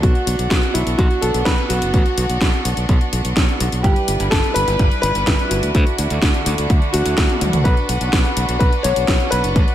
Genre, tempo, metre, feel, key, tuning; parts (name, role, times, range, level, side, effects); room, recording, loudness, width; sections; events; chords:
italo disco; 126 BPM; 4/4; straight; B minor; A4 = 438 Hz
clear grand piano; melody; 0.0-9.7 s; E4 to C#5; -22 LUFS; left 1 dB; ping-pong delay
rich chamber string section; sustained chords; 0.0-9.7 s; D3 to B4; -24 LUFS; equal
modern bright fingered electric bass; bass; 0.0-9.6 s; F#1 to D2; -21 LUFS; equal; tube saturation
electronic kick drum; drums; 0.0-9.7 s; -16 LUFS; equal; overdrive, studio reverb
house drum kit; drums; 0.0-9.7 s; hi-hat, snare drum, toms; -23 LUFS; equal; overdrive, studio reverb, gated reverb
light reverb, digital ambience; -15 LUFS; side -12 dB against mid
0.0-9.7 A section
drum fill 7.3-7.7
0.0 Bm; 3.8 G6; 5.7 Dadd9; 7.7 Bm